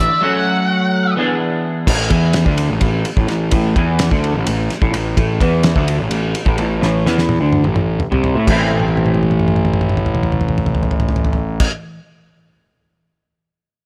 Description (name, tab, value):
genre	psychedelic rock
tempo	255 BPM (eighths)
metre	7/8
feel	straight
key	A minor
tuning	A4 = 440 Hz
part	octave-fuzz lead guitar	melody	0.0-1.1 s	E5 to F#5	-21 LUFS	equal	wah, distortion, tape echo
part	semi-hollow electric guitar	riff	0.0-12.0 s	A2 to G#4	-21 LUFS	equal	phaser, double-tracked
part	fuzz picked electric bass	bass	0.0-11.7 s	A1 to A2	-20 LUFS	equal	overdrive
part	cloth-damped thuddy drum kit	drums	1.9-11.7 s	crash cymbal, kick drum, ride cymbal, snare drum, toms	-20 LUFS	equal	none
room	light reverb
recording	none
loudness	-16 LUFS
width	mono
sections	0.0-1.9 A section; 1.9-8.5 B section; 8.5-11.8 C section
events	drum fill 6.8-8.5, 8.7-11.6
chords	0.2 F#m; 1.2 E7; 1.9 A5; 8.5 Am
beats	| 0.22 0.46 0.69 0.93 1.16 1.40 1.64 | 1.87 2.11 2.34 2.58 2.81 3.05 3.28 | 3.52 3.76 3.99 4.23 4.46 4.70 4.93 | 5.17 5.41 5.64 5.88 6.11 6.35 6.58 | 6.82 7.05 7.29 7.53 7.76 8.00 8.23 | 8.47 8.70 8.94 9.18 9.41 9.65 9.88 | 10.12 10.35 10.59 10.83 11.06 11.30 11.53